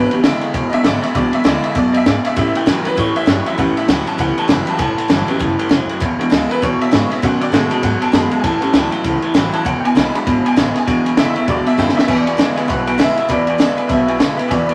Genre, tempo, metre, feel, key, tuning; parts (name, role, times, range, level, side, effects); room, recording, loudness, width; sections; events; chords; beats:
rockabilly; 198 BPM; 4/4; swing 60% on 8ths; E mixolydian; A4 = 440 Hz
picked steel-string acoustic guitar; accompaniment; 0.0-14.7 s; E2 to F#4; -26 LUFS; equal
tack piano; accompaniment; 0.0-14.7 s; D#3 to B5; -24 LUFS; equal
electric guitar through a small old amp; riff; 0.0-14.7 s; E2 to G#3; -20 LUFS; equal
upright bass; bass; 0.0-14.7 s; E1 to B2; -28 LUFS; equal
compact cocktail drum kit; drums; 0.1-14.7 s; crash cymbal, kick drum, ride cymbal, snare drum; -20 LUFS; equal
electric guitar through a small old amp; melody; 12.1-14.7 s; D5 to F#5; -22 LUFS; equal; spring reverb
moderate studio reverb, RT60 0.7 s; vinyl crackle; -16 LUFS; mono
0.0-12.1 A section; 12.1-14.7 B section
honky-tonk piano solo 0.0-12.1; drum fill 11.8-12.1
0.0 E7; 2.4 A7; 6.0 E7; 7.2 B7; 8.4 A7; 9.7 E7
0.24 0.55 0.85 | 1.15 1.46 1.76 2.06 | 2.37 2.67 2.97 3.28 | 3.58 3.88 4.19 4.49 | 4.80 5.10 5.40 5.71 | 6.01 6.32 6.62 6.92 | 7.23 7.53 7.83 8.14 | 8.44 8.75 9.05 9.35 | 9.66 9.96 10.26 10.57 | 10.87 11.17 11.47 11.78 | 12.08 12.38 12.69 12.99 | 13.29 13.60 13.90 14.20 | 14.51